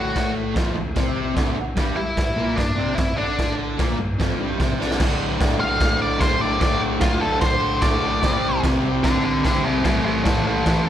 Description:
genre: garage rock duo or trio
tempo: 148 BPM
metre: 4/4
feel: straight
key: unclear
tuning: A4 = 440 Hz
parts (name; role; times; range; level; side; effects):
- octave-fuzz lead guitar; melody; 0.0-10.9 s; C#4 to F5; -23 LUFS; left 1 dB; distortion, slapback echo
- fuzz guitar; riff; 0.0-10.9 s; D2 to D4; -22 LUFS; equal; distortion, slapback echo
- raw garage drum kit; drums; 0.2-10.8 s; crash cymbal, kick drum, snare drum; -23 LUFS; equal; none
room: studio reverb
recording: live gig heard through the venue's PA, recital hall reverb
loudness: -18 LUFS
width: side -10 dB against mid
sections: 0.0-5.0 A section; 5.0-10.9 B section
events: drum fill 4.8; lead electric guitar solo 5.0-10.9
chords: 0.0 D5; 1.8 G5; 5.0 D5; 8.2 C5; 9.8 A

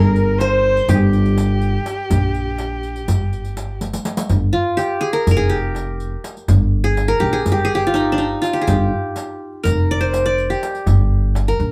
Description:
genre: Turkish makam ensemble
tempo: 247 BPM (eighths)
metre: 9/8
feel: straight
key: G makam kurdi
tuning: A4 = 440 Hz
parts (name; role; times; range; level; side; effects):
- qanun; melody; 0.0-11.7 s; D4 to D5; -22 LUFS; equal; none
- clear kamancheh; second line; 0.0-3.8 s; G4 to C5; -28 LUFS; equal; none
- upright bass; bass; 0.0-11.7 s; F1 to Bb1; -21 LUFS; equal; none
- darbuka; percussion; 0.2-11.7 s; none; -24 LUFS; equal; none
- riq; percussion; 0.2-11.7 s; none; -32 LUFS; equal; none
room: light reverb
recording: band playing live in one room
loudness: -18 LUFS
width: mono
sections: 0.0-4.3 A section; 4.3-11.7 B section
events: drum fill 3.8-4.3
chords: none

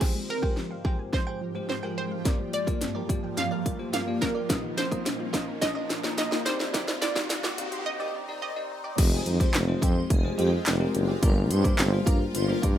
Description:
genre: dance-pop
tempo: 107 BPM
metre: 4/4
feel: straight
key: F dorian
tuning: A4 = 440 Hz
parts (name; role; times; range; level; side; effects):
- analog pluck; melody; 0.0-8.7 s; Ab4 to F5; -33 LUFS; right 2 dB; chorus, ping-pong delay
- bell-like tine electric piano; accompaniment; 0.0-12.8 s; G3 to F5; -35 LUFS; left 3 dB; sidechain pumping
- shimmering ambient pad; sustained chords; 0.0-12.8 s; G2 to Bb4; -35 LUFS; equal; chorus, built-in reverb, phaser, sidechain pumping
- glassy wavetable pluck; arpeggios; 0.0-9.0 s; G2 to G6; -40 LUFS; left 2 dB; chorus, sidechain pumping, ping-pong delay
- direct-recorded clean electric guitar; riff; 0.0-12.8 s; Ab3 to G5; -38 LUFS; right 4 dB; lush chorus
- house drum kit; drums; 0.0-12.8 s; crash cymbal, handclaps, hi-hat, kick drum, snare drum; -26 LUFS; equal; overdrive
- riser; sound effects; 2.5-7.9 s; none; -38 LUFS; equal; none
- warm tuba; bass; 9.0-12.8 s; F1 to G2; -26 LUFS; equal; sidechain pumping
- airy dreamy lead; melody; 9.1-12.4 s; G4 to C5; -34 LUFS; equal; chorus, sidechain pumping
room: light reverb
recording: rough home demo mix, high-pass filter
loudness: -24 LUFS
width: side -11 dB against mid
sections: 0.0-9.0 A section; 9.0-12.8 B section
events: build-up 0.0-9.0; drum fill 0.0-7.9; filter sweep 0.0-9.0; riser 2.5-9.0; break 7.9-9.0; drop 9.0-12.8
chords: 0.0 Fmadd9; 2.3 Gm7; 4.5 Bbsus4; 6.5 Cmadd9; 9.0 Fmadd9; 11.2 Gm7

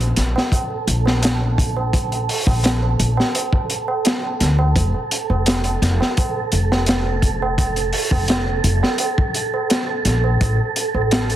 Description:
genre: trip hop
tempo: 85 BPM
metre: 4/4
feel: straight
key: unclear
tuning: A4 = 440 Hz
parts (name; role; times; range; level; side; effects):
- upright bass; bass; 0.0-11.4 s; F1 to D2; -19 LUFS; equal; none
- crunchy breakbeat drum kit; drums; 0.0-11.4 s; hi-hat, kick drum, snare drum; -20 LUFS; equal; none
- tabla; percussion; 0.0-11.4 s; none; -27 LUFS; right 2 dB; none
- wind-like tuned noise texture; texture; 0.0-11.4 s; A4; -25 LUFS; right 7 dB; built-in reverb
room: light reverb, studio ambience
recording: heavily compressed radio sound, multiband compression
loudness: -16 LUFS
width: side -12 dB against mid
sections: 0.0-11.4 A section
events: none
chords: 0.0 N.C.; 4.8 F; 10.4 N.C.

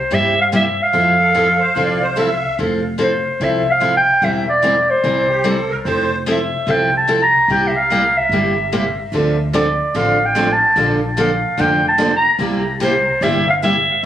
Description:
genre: acoustic string swing (jazz manouche)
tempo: 146 BPM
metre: 4/4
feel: swing 64% on 8ths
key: F major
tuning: A4 = 444 Hz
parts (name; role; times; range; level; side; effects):
- breathy clarinet; melody; 0.0-14.0 s; C5 to Bb5; -15 LUFS; equal; plate reverb, tape echo
- picked steel-string acoustic guitar; accompaniment; 0.1-13.8 s; C3 to Bb4; -20 LUFS; left 1 dB; none
- picked steel-string acoustic guitar; accompaniment; 0.1-2.3, 9.1-13.7 s; C3 to A4; -24 LUFS; right 5 dB; none
- upright bass; bass; 0.1-14.1 s; E1 to G2; -24 LUFS; equal; none
- musette accordion; second line; 1.2-2.5, 5.3-6.2 s; G4 to E5; -21 LUFS; right 2 dB; none
room: moderate studio reverb, RT60 0.8 s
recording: recorded on a phone in the room, club reverb, compression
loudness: -13 LUFS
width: side -11 dB against mid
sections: 0.0-2.6 A section; 2.6-14.1 A section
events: none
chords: 0.0 C7; 0.9 Fmaj7; 4.2 C7/E; 5.9 Fmaj7; 7.5 C7; 9.1 Dm7; 10.8 Bbmaj7; 12.4 C7

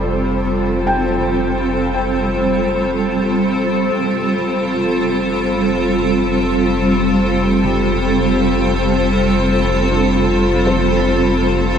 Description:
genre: ambient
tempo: free time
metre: none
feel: none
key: F major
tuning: A4 = 440 Hz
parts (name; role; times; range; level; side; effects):
- granular cloud pad; sustained chords; 0.0-11.8 s; G3 to C5; -15 LUFS; equal; built-in reverb
- felt-muted upright piano; arpeggios; 0.0-11.8 s; G3 to G5; -26 LUFS; left 1 dB; ping-pong delay
- round analog bass; bass; 0.0-11.8 s; F1; -23 LUFS; equal; none
room: wet shimmer reverb, RT60 8.3 s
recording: none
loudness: -14 LUFS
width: side -8 dB against mid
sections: 0.0-11.8 A section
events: fade-out on felt piano 0.0-11.8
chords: 0.0 Fadd9

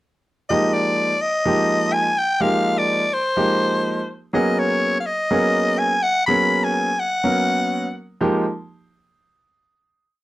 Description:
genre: jazz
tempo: 124 BPM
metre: 4/4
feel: straight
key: unclear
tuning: A4 = 440 Hz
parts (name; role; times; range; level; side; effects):
- raspy soprano saxophone; melody; 0.5-8.0 s; C5 to Cb6; -19 LUFS; left 1 dB; slapback echo
- clear concert grand piano; accompaniment; 0.5-8.4 s; F3 to Bb4; -21 LUFS; right 1 dB; none
room: light reverb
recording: dry, close 1970s-style studio recording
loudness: -17 LUFS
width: side -16 dB against mid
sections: 0.5-8.2 groove; 8.2-10.1 final chord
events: none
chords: 0.5 Fm11; 4.3 Abm11; 8.2 Fm11

